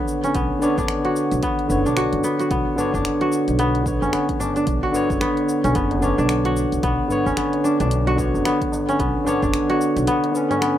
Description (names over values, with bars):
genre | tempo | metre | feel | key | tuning
organic downtempo | 111 BPM | 4/4 | swing 59% on 16ths | B minor | A4 = 440 Hz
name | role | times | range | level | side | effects
barky tine electric piano | accompaniment | 0.0-10.8 s | D3 to C#5 | -21 LUFS | equal | sidechain pumping, digital delay, plate reverb
kora | arpeggios | 0.0-10.8 s | B3 to F#4 | -23 LUFS | equal | digital delay, plate reverb
deep house drum kit | drums | 0.1-10.7 s | finger snaps, hi-hat, shaker | -32 LUFS | left 1 dB | none
upright bass | bass | 0.3-10.0 s | F#1 to B1 | -24 LUFS | equal | sidechain pumping
electronic kick drum | drums | 0.3-9.5 s | none | -28 LUFS | equal | none
tabla | percussion | 2.8-10.6 s | none | -38 LUFS | equal | none
room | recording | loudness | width
moderate studio reverb, RT60 0.6 s | rough home demo mix | -18 LUFS | side -11 dB against mid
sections
0.0-10.8 A section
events
none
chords
0.0 Bmadd9